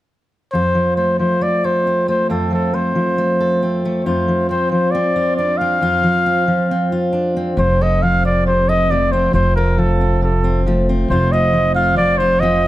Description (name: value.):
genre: indie folk with a building arrangement.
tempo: 136 BPM.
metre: 4/4.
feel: straight.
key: F mixolydian.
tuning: A4 = 444 Hz.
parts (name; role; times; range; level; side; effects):
warm trumpet; melody; 0.5-12.7 s; A4 to F5; -17 LUFS; equal; none.
fingerpicked steel-string acoustic guitar; accompaniment; 0.5-12.7 s; F2 to A4; -18 LUFS; equal; none.
upright bass; bass; 7.6-12.7 s; F1; -18 LUFS; equal; none.
room: moderate large studio reverb, RT60 1.2 s, small room reverb.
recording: none.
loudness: -14 LUFS.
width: side -15 dB against mid.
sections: 0.5-7.6 A section; 7.6-12.7 B section.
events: none.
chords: 0.5 F; 4.1 Dm7/F; 7.6 F.